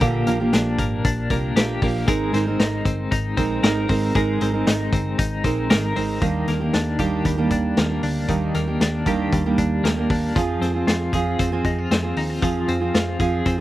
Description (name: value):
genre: jangly indie pop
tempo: 116 BPM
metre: 4/4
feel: straight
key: Eb major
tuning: A4 = 440 Hz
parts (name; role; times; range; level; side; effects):
- fingerpicked steel-string acoustic guitar; accompaniment; 0.0-13.6 s; Bb2 to Bb4; -23 LUFS; right 4 dB; none
- twelve-string electric guitar; arpeggios; 0.0-13.6 s; Bb2 to Bb4; -25 LUFS; left 4 dB; tremolo
- vintage muted picked electric bass; bass; 0.0-13.6 s; G1 to F2; -26 LUFS; left 1 dB; none
- vintage drum kit; drums; 0.0-13.6 s; hi-hat, kick drum, snare drum; -23 LUFS; left 1 dB; none
room: little or no reverb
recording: recorded outdoors, with no room sound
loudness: -19 LUFS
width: side -15 dB against mid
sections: 0.0-6.2 A section; 6.2-13.6 B section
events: none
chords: 0.0 Bb6; 2.1 Abadd9; 6.2 Ebmaj7; 10.4 Fm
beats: | 0.01 0.53 1.05 1.56 | 2.08 2.60 3.12 3.63 | 4.15 4.67 5.18 5.70 | 6.22 6.74 7.25 7.77 | 8.29 8.80 9.32 9.84 | 10.36 10.87 11.39 11.91 | 12.43 12.94 13.46